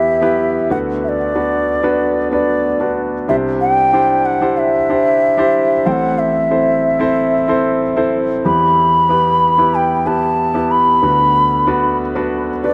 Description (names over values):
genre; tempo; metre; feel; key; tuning
pop; 93 BPM; 4/4; straight; E minor; A4 = 441 Hz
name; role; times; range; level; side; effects
hollow bansuri; melody; 0.0-12.7 s; D5 to B5; -17 LUFS; equal; none
clear concert grand piano; accompaniment; 0.0-12.7 s; A1 to C5; -19 LUFS; equal; none
room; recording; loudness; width
moderate lush hall reverb, RT60 2.8 s; dark, warm production; -15 LUFS; mono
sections
0.0-12.7 A section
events
none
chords
0.0 Em; 0.7 Bm/D; 3.3 Cadd9; 5.9 Am; 8.4 Em; 11.0 Bm/D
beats
0.06 | 0.71 1.35 2.00 2.64 | 3.29 3.93 4.58 5.22 | 5.87 6.51 7.16 7.80 | 8.45 9.10 9.74 10.38 | 11.03 11.68 12.32